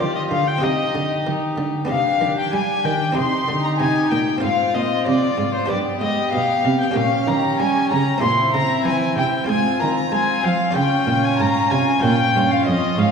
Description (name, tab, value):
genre	classical, baroque-style concerto movement with solo episodes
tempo	95 BPM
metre	4/4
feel	straight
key	F minor from 7.0 s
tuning	A4 = 440 Hz
part	dark violin	melody	0.0-13.1 s	C5 to C6	-22 LUFS	left 3 dB	none
part	rich chamber violin section	melody	0.0-13.1 s	E4 to G4	-27 LUFS	left 5 dB	none
part	rich chamber violin section	second line	0.0-13.1 s	C5 to C6	-26 LUFS	left 1 dB	none
part	buff-stop harpsichord	accompaniment	0.0-13.1 s	F2 to C5	-27 LUFS	right 1 dB	none
part	warm chamber viola section	accompaniment	0.0-13.1 s	B3 to F4	-24 LUFS	right 2 dB	none
part	dark chamber cello section	bass	0.0-13.1 s	F2 to Ab3	-23 LUFS	right 2 dB	none
room	wet scoring stage reverb, RT60 1.8 s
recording	heard from further back in the room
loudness	-17 LUFS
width	side -6 dB against mid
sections	0.0-13.1 A section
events	none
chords	0.0 G7(no3); 0.6 Cm; 1.9 G/C; 3.2 Cm; 4.4 Fm/Ab; 5.7 G; 7.0 Gdim/Bb; 8.2 C7/Bb; 9.5 Fm/Ab; 10.8 Db; 12.0 Bbm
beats	0.62 1.26 | 1.90 2.54 3.17 3.80 | 4.43 5.07 5.71 6.34 | 6.97 7.60 8.23 8.86 | 9.50 10.13 10.77 11.40 | 12.04 12.67